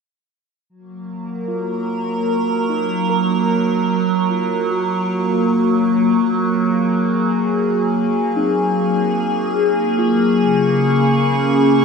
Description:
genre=ambient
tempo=74 BPM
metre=3/4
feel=straight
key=Gb lydian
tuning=A4 = 438 Hz
part: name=evolving wavetable pad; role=sustained chords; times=1.0-11.8 s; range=Db3 to Bb4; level=-15 LUFS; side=equal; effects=chorus, built-in reverb, phaser
part: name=muted felt-like synth keys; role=arpeggios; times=1.5-11.8 s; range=C4 to Bb4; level=-29 LUFS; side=equal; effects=chorus, analog delay
part: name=drifting glass-harmonics texture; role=texture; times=10.6-11.8 s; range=Db6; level=-26 LUFS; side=right 7 dB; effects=chorus, built-in reverb
room=wet plate reverb, RT60 2.6 s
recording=echo-heavy mix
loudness=-15 LUFS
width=side -5 dB against mid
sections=0.7-11.8 A section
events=fade-in on synth keys 0.7-11.8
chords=0.7 Gbmaj7; 10.4 Db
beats=| 0.67 1.48 2.29 | 3.10 3.91 4.72 | 5.53 6.34 7.16 | 7.97 8.78 9.59 | 10.40 11.21

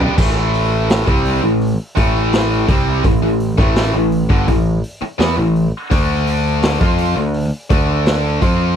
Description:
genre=classic rock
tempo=84 BPM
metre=4/4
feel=straight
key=unclear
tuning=A4 = 441 Hz
part: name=tight distorted guitar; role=riff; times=0.0-8.8 s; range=G2 to G4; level=-17 LUFS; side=equal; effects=distortion
part: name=overdriven picked electric bass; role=bass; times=0.0-8.8 s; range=G1 to F2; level=-18 LUFS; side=equal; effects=none
part: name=raw garage drum kit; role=drums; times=0.0-8.6 s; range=crash cymbal, hi-hat, kick drum, snare drum, toms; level=-18 LUFS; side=equal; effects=none
room=little or no reverb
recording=dry, close 1970s-style studio recording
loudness=-13 LUFS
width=side -8 dB against mid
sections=0.2-8.8 A section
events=drum fill 0.0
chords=0.2 A5; 5.9 D5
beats=| 0.18 0.90 1.61 2.33 | 3.04 3.76 4.48 5.20 | 5.91 6.63 7.35 8.06

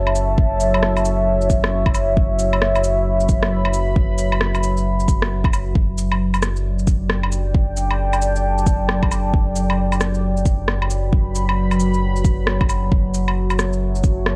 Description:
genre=future garage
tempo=134 BPM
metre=4/4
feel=swing 62% on 16ths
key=unclear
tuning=A4 = 440 Hz
part: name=dark analog pad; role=sustained chords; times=0.0-14.4 s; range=F#3 to B5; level=-24 LUFS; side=equal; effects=chorus, phaser, sidechain pumping
part: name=soft dub sub bass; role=bass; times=0.0-14.4 s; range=F#1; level=-24 LUFS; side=equal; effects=tube saturation, sidechain pumping
part: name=electronic woodblock, cabasa, shaker and rim click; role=drums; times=0.1-14.4 s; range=none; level=-26 LUFS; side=equal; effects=none
part: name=electronic kick drum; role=drums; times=0.4-14.1 s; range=none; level=-20 LUFS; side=equal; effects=none
room=light reverb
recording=none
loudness=-19 LUFS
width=mono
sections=0.0-5.8 A section; 5.8-14.4 A section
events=none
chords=0.0 F#m7; 5.8 Gsus2/F#; 9.3 Gmaj7/F#; 12.9 F#m7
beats=| 0.38 0.83 1.28 1.72 | 2.17 2.62 3.07 3.52 | 3.96 4.41 4.86 5.31 | 5.75 6.20 6.65 7.10 | 7.54 7.99 8.44 8.89 | 9.34 9.78 10.23 10.68 | 11.13 11.57 12.02 12.47 | 12.92 13.37 13.81 14.26

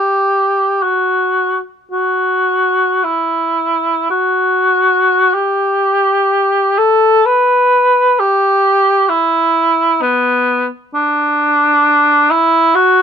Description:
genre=classical, free, expressive piece for unaccompanied cor anglais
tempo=free time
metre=none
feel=none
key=E minor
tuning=A4 = 441 Hz
part: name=mellow cor anglais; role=solo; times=0.0-13.0 s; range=B3 to B4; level=-11 LUFS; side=equal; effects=none
room=light reverb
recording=close, detailed microphones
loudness=-11 LUFS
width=side -8 dB against mid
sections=0.0-5.3 A section; 5.3-13.0 B section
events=none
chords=none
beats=free time

